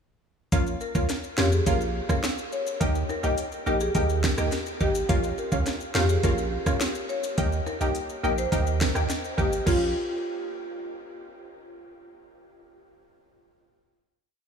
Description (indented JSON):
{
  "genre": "dancehall",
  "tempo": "105 BPM",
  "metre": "4/4",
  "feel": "straight",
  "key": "Bb dorian",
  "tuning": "A4 = 439 Hz",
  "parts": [
    { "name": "punchy chord stab", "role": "accompaniment", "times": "0.5-9.9 s", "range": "Bb3 to G4", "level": "-29 LUFS", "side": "right 1 dB", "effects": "chorus, sidechain pumping" },
    { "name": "punchy sub bass", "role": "bass", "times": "0.5-9.9 s", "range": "Ab1 to F2", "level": "-27 LUFS", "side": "right 1 dB", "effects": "none" },
    { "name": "island pop drum kit", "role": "drums", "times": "0.5-9.8 s", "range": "crash cymbal, hi-hat, kick drum, rim click, snare drum", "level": "-28 LUFS", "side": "right 1 dB", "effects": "none" },
    { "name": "maracas and timbales", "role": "percussion", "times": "0.5-9.9 s", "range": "none", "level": "-41 LUFS", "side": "left 8 dB", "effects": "none" },
    { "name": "marimba with medium mallets", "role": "melody", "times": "0.8-9.9 s", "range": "F4 to Db5", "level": "-30 LUFS", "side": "equal", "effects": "analog delay" }
  ],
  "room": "moderate huge ambient reverb, RT60 8.3 s",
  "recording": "dreamy mix soaked in reverb, studio reverb",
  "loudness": "-23 LUFS",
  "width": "side -6 dB against mid",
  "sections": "0.5-9.7 chorus; 9.7-12.0 final chord",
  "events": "none",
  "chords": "0.5 Bbm; 2.8 Eb; 5.1 Bbm; 7.4 Eb; 9.7 Bbm"
}